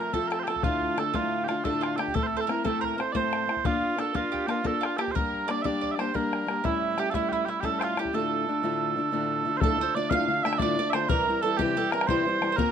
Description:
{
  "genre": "celtic folk, Celtic slip jig",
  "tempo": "120 BPM (dotted quarters)",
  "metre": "9/8",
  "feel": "straight",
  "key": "D minor",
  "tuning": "A4 = 441 Hz",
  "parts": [
    { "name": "mellow small bagpipes", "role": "melody", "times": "0.0-12.7 s", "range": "E4 to F5", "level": "-29 LUFS", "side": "right 5 dB", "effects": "none" },
    { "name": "mandolin", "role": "second line", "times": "0.0-12.7 s", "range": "E4 to F5", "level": "-32 LUFS", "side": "right 6 dB", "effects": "none" },
    { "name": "fingerpicked acoustic archtop guitar", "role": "accompaniment", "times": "0.0-12.7 s", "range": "D2 to Bb4", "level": "-29 LUFS", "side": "left 4 dB", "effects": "none" },
    { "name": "bodhran", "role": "percussion", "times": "0.1-12.7 s", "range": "none", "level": "-31 LUFS", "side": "left 4 dB", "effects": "none" }
  ],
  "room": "moderate small room reverb, RT60 0.6 s",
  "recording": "close, detailed microphones",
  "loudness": "-24 LUFS",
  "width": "side -8 dB against mid",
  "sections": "0.0-9.6 A section; 9.6-12.7 B section",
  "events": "none",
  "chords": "0.0 F; 0.6 Dm; 2.1 Am; 3.6 Bb; 5.1 Gm; 6.6 A7; 8.1 Dm; 11.1 C",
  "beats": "0.13 | 0.64 1.14 1.64 | 2.14 2.65 3.15 | 3.65 4.15 4.65 | 5.15 5.64 6.14 | 6.64 7.14 7.64 | 8.13 8.63 9.12 | 9.62 10.11 10.61 | 11.10 11.59 12.08 | 12.58"
}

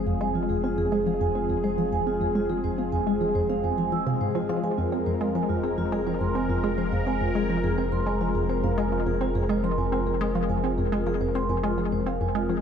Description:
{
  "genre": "ambient, sequencer-driven space music",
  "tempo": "105 BPM",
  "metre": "4/4",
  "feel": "straight",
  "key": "F minor",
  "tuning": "A4 = 441 Hz",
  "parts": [
    { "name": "sweeping resonant pad", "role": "sustained chords", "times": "0.0-12.6 s", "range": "F3 to Bb4", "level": "-28 LUFS", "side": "left 1 dB", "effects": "wide subtle chorus" },
    { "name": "round analog bass", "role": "bass", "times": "0.0-12.6 s", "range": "F1", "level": "-33 LUFS", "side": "equal", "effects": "none" },
    { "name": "vibraphone with medium mallets", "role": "arpeggios", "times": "0.1-12.6 s", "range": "F4 to E6", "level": "-31 LUFS", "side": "right 3 dB", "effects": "auto-pan, ping-pong delay" },
    { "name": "resonant blip pluck", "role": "riff", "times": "0.1-12.6 s", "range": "F2 to C4", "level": "-27 LUFS", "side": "left 1 dB", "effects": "chorus, ping-pong delay" }
  ],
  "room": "moderate plate reverb, RT60 3.0 s",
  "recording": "echo-heavy mix",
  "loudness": "-23 LUFS",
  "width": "side -8 dB against mid",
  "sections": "0.0-12.6 A section",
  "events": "filter sweep on synth arpeggio sound 0.0-12.6",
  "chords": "0.0 Fm",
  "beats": "| 0.07 0.64 1.21 1.78 | 2.35 2.92 3.50 4.07 | 4.64 5.21 5.78 6.35 | 6.92 7.50 8.07 8.64 | 9.21 9.78 10.35 10.92 | 11.49 12.07"
}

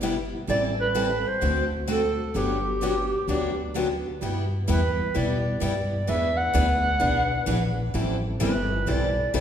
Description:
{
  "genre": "acoustic string swing (jazz manouche)",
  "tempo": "129 BPM",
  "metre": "4/4",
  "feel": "swing 64% on 8ths",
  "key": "G major",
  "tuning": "A4 = 438 Hz",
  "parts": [
    { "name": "picked steel-string acoustic guitar", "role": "accompaniment", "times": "0.0-9.4 s", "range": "C3 to A4", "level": "-30 LUFS", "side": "left 4 dB", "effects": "none" },
    { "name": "picked steel-string acoustic guitar", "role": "accompaniment", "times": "0.0-9.4 s", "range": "C3 to B4", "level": "-31 LUFS", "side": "right 4 dB", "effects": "none" },
    { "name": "upright bass", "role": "bass", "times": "0.0-9.4 s", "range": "G1 to B2", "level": "-27 LUFS", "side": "equal", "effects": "none" },
    { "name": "mellow clarinet", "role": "melody", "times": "0.5-9.4 s", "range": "G4 to F#5", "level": "-26 LUFS", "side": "right 1 dB", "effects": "none" }
  ],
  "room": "wet recital hall reverb, RT60 1.8 s",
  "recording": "recorded in a church or concert hall",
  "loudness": "-22 LUFS",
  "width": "side -9 dB against mid",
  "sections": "0.0-4.2 A section; 4.2-9.4 B section",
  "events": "none",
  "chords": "0.5 Am7; 1.4 D7; 2.4 Gmaj7; 4.2 G6; 6.1 E7; 7.9 Am7",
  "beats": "0.03 | 0.49 0.96 1.42 1.89 | 2.35 2.82 3.28 3.75 | 4.21 4.68 5.14 5.61 | 6.08 6.54 7.01 7.47 | 7.94 8.40 8.87 9.33"
}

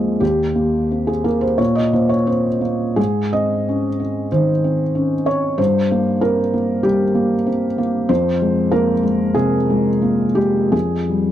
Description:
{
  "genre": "neoclassical minimalist piano",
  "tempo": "80-97 BPM",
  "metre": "4/4",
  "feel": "rubato",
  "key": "F minor",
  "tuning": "A4 = 440 Hz",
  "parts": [
    { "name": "felt-muted upright piano", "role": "solo", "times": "0.0-11.3 s", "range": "Eb2 to Eb5", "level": "-15 LUFS", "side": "equal", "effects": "none" }
  ],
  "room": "little or no reverb",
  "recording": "dry, close 1970s-style studio recording",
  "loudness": "-15 LUFS",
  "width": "side -11 dB against mid",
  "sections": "0.0-11.3 A section",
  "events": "none",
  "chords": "0.2 Eb; 3.0 Ab; 5.6 C5/G; 8.1 Fm; 10.7 Fmadd9",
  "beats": "| 0.22 0.91 1.59 2.27 | 2.98 3.68 4.32 4.95 | 5.59 6.21 6.84 7.47 | 8.10 8.72 9.36 10.03 | 10.74"
}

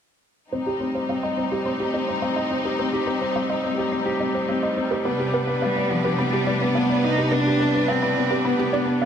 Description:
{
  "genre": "piano and strings electronica",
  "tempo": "106 BPM",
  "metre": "4/4",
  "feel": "straight",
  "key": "C harmonic minor",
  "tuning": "A4 = 440 Hz",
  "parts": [
    { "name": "clear studio string section", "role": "sustained chords", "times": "0.5-9.1 s", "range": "C3 to B4", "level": "-26 LUFS", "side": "left 1 dB", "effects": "none" },
    { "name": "analog pluck", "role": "arpeggios", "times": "0.5-9.1 s", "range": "B4 to C6", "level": "-32 LUFS", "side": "right 3 dB", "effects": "none" },
    { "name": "felt-muted upright piano", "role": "riff", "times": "0.5-9.1 s", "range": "B3 to Eb5", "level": "-24 LUFS", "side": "equal", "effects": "low-pass filter, ping-pong delay" },
    { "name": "rich cello", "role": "melody", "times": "5.6-9.1 s", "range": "F3 to Eb4", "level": "-22 LUFS", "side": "equal", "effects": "none" }
  ],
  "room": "wet concert hall reverb, RT60 2.3 s",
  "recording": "none",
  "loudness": "-20 LUFS",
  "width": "side -8 dB against mid",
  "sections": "0.5-9.1 A section",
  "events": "filter sweep on felt piano 0.5-9.1",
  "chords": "0.5 Cm; 5.1 G/C",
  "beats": "| 0.53 1.09 1.66 2.23 | 2.79 3.36 3.92 4.49 | 5.06 5.62 6.19 6.75 | 7.32 7.89 8.45 9.02"
}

